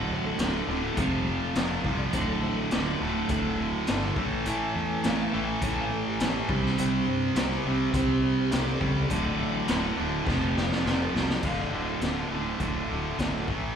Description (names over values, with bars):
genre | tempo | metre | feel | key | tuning
classic rock | 103 BPM | 4/4 | straight | unclear | A4 = 441 Hz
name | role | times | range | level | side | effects
picked acoustic archtop guitar | accompaniment | 0.0-13.8 s | A2 to C5 | -39 LUFS | left 3 dB | none
tonewheel organ | sustained chords | 0.0-11.4 s | E3 to G5 | -32 LUFS | equal | slow rotary speaker, overdrive, chorus vibrato, plate reverb
cranked stack guitar | riff | 0.0-13.8 s | D2 to C4 | -30 LUFS | right 10 dB | overdrive
tight distorted guitar | riff | 0.0-13.8 s | D2 to C4 | -32 LUFS | left 12 dB | distortion, slapback echo
fuzz fingered electric bass | bass | 0.0-13.7 s | D1 to G2 | -32 LUFS | left 1 dB | overdrive
raw garage drum kit | drums | 0.4-13.6 s | crash cymbal, hi-hat, kick drum, snare drum | -31 LUFS | left 1 dB | none
fuzz lead guitar | second line | 11.5-12.6 s | D4 to F5 | -39 LUFS | left 2 dB | distortion, digital delay, plate reverb
room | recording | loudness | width
moderate club reverb, RT60 0.6 s | live gig heard through the venue's PA, club reverb | -25 LUFS | side -8 dB against mid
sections
0.0-11.4 A section; 11.4-13.8 B section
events
drum fill 10.3-11.4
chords
0.0 D; 1.0 F; 2.1 D; 4.2 A; 6.5 Csus2; 9.1 D; 10.3 F; 11.4 D